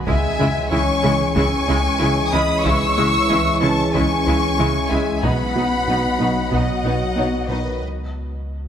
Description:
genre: cinematic, hybrid orchestral and electronic film score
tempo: 93 BPM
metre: 4/4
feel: straight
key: C# minor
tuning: A4 = 440 Hz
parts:
  - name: ethereal airy pad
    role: sustained chords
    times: 0.0-7.8 s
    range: E3 to D#5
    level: -29 LUFS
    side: equal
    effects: ensemble chorus, built-in reverb
  - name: warm sub bass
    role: bass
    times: 0.0-8.7 s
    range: B1 to C#2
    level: -28 LUFS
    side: equal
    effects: none
  - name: felt-muted upright piano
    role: texture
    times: 0.0-7.8 s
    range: D#4 to D#5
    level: -34 LUFS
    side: equal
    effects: none
  - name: warm symphonic violin section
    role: melody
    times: 0.1-7.8 s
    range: D#5 to E6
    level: -25 LUFS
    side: left 4 dB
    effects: none
  - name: warm symphonic violin section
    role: second line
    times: 0.1-7.8 s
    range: B4 to C#6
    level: -24 LUFS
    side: left 1 dB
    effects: none
  - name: rich symphonic viola section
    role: accompaniment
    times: 0.1-7.6 s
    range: G#3 to E4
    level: -27 LUFS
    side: right 1 dB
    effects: none
  - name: mellow trombone section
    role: sustained chords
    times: 0.1-7.8 s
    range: B2 to G#3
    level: -27 LUFS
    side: right 3 dB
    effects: none
  - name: warm French horn section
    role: sustained chords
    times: 0.1-7.8 s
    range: D#3 to D#5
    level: -26 LUFS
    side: left 3 dB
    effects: none
  - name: tight sequenced synth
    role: arpeggios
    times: 0.1-7.7 s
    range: C#3 to B4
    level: -30 LUFS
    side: equal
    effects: none
  - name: rubbery square bass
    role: riff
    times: 0.1-7.7 s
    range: C#2 to B3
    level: -26 LUFS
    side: right 1 dB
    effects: none
  - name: rich symphonic double bass section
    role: bass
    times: 0.1-7.6 s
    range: B1 to C#2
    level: -29 LUFS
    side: right 2 dB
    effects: none
  - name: warm studio cello section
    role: bass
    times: 0.1-7.6 s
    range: B2 to C#3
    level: -28 LUFS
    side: right 1 dB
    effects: none
  - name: taiko ensemble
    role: drums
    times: 0.1-7.1 s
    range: none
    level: -28 LUFS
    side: left 1 dB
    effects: none
room: moderate scoring stage reverb, RT60 2.0 s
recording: none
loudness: -16 LUFS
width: side -9 dB against mid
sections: 0.0-8.7 A section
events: break 7.8-8.7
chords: 0.1 C#m; 5.2 B; 7.8 N.C.

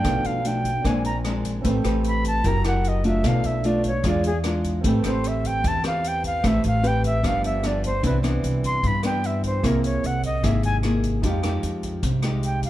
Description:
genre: bossa nova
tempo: 150 BPM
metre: 4/4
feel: straight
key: A minor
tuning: A4 = 440 Hz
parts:
  - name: reedy concert flute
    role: melody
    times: 0.0-12.7 s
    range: G#4 to C6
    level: -26 LUFS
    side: right 1 dB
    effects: none
  - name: nylon-string guitar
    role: accompaniment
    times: 0.0-12.7 s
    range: G2 to B4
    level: -26 LUFS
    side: left 1 dB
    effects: none
  - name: warm concert grand piano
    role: accompaniment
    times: 0.0-12.7 s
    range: C4 to Ab5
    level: -33 LUFS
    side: right 4 dB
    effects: none
  - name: upright bass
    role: bass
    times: 0.0-12.7 s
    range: F#1 to G2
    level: -25 LUFS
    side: equal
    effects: none
  - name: swinging big-band drum kit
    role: drums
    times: 0.0-12.7 s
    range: hi-hat, kick drum, rim click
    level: -29 LUFS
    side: equal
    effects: none
room: light reverb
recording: dark, warm production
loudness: -20 LUFS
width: side -14 dB against mid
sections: 0.0-8.0 A section; 8.0-12.7 A section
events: flute solo 0.0-12.7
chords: 0.0 Bm7b5; 0.8 Bb9; 1.6 Am9; 2.4 F#7b9; 3.2 Bm7b5; 4.0 E7b9; 4.8 Am9; 7.2 G7; 8.0 Cmaj9; 9.6 Caug7; 11.2 Fm9

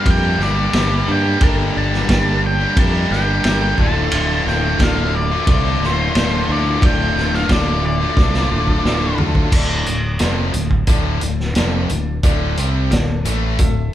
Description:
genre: classic rock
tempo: 89 BPM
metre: 4/4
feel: straight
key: D minor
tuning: A4 = 444 Hz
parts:
  - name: octave-fuzz lead guitar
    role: melody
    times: 0.0-9.2 s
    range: C5 to A5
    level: -22 LUFS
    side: left 1 dB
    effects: distortion
  - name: picked steel-string acoustic guitar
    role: accompaniment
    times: 0.0-9.5 s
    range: G2 to A4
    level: -34 LUFS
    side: right 3 dB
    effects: none
  - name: tonewheel organ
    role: sustained chords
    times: 0.0-9.5 s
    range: A3 to A4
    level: -31 LUFS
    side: right 1 dB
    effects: none
  - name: biting overdriven guitar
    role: riff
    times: 0.0-13.9 s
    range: D2 to G4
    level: -26 LUFS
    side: right 7 dB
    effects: none
  - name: distorted electric guitar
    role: riff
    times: 0.0-13.9 s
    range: D2 to G4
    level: -25 LUFS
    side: left 8 dB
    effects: overdrive
  - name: overdriven semi-hollow guitar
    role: riff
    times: 0.0-9.2 s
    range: D2 to G3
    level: -25 LUFS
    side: equal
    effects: none
  - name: warm grand piano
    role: accompaniment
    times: 0.1-13.9 s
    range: F4 to E5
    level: -30 LUFS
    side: equal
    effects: none
  - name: fingered electric bass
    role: bass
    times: 0.1-13.9 s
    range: D1 to G2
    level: -20 LUFS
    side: equal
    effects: none
  - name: vintage drum kit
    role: drums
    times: 0.1-13.8 s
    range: crash cymbal, hi-hat, kick drum, ride cymbal, snare drum, toms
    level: -19 LUFS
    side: equal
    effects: none
room: moderate large studio reverb, RT60 0.8 s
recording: band playing live in one room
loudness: -14 LUFS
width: side -12 dB against mid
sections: 0.0-9.5 A section; 9.5-13.9 B section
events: drum fill 8.2-9.5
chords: 0.0 Gmadd9; 3.8 Dm

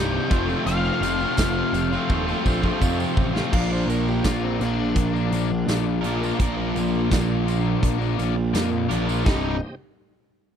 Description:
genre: classic rock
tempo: 84 BPM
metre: 4/4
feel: straight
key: unclear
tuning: A4 = 440 Hz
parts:
  - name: octave-fuzz lead guitar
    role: melody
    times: 0.0-2.8 s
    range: F5 to G5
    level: -29 LUFS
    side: left 4 dB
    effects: distortion
  - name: bright tonewheel organ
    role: sustained chords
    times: 0.0-9.8 s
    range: A3 to F5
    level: -38 LUFS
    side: right 1 dB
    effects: none
  - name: crunchy overdriven guitar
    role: riff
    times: 0.0-9.5 s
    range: C2 to Bb4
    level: -26 LUFS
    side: left 13 dB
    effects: none
  - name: crunchy overdriven guitar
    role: riff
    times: 0.0-9.6 s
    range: C2 to Bb4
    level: -26 LUFS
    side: right 12 dB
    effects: none
  - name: fuzz picked electric bass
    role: bass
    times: 0.0-9.6 s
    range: C1 to F2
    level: -26 LUFS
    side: equal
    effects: overdrive
  - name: big rock drum kit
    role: drums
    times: 0.3-9.4 s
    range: crash cymbal, hi-hat, kick drum, snare drum, tambourine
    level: -24 LUFS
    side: equal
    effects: none
  - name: tambourine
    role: percussion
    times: 0.3-9.6 s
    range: none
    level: -43 LUFS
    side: right 12 dB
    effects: none
  - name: overdriven electric guitar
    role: second line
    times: 3.5-9.6 s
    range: C4 to F5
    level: -31 LUFS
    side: left 3 dB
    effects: none
room: little or no reverb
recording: dry, close 1970s-style studio recording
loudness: -20 LUFS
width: side -8 dB against mid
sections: 0.0-3.5 A section; 3.5-9.3 B section; 9.3-10.6 C section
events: drum fill 2.1-3.5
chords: 0.3 Fadd9; 3.5 Bb; 9.3 Cm

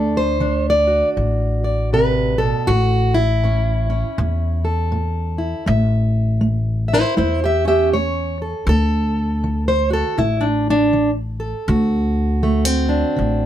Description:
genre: acoustic country blues, solo or duo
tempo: 80 BPM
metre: 4/4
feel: swing 61% on 8ths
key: unclear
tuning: A4 = 440 Hz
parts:
  - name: fingerpicked plugged-in steel-string acoustic guitar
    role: melody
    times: 0.0-13.5 s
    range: A2 to E5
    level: -19 LUFS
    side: right 1 dB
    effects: none
  - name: upright bass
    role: bass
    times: 0.0-13.5 s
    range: A1 to E2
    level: -19 LUFS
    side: equal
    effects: none
room: little or no reverb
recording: none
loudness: -16 LUFS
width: side -11 dB against mid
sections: 0.0-13.5 A section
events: steel-string acoustic guitar solo 0.0-13.5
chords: 0.0 D7; 2.7 A; 8.7 D7

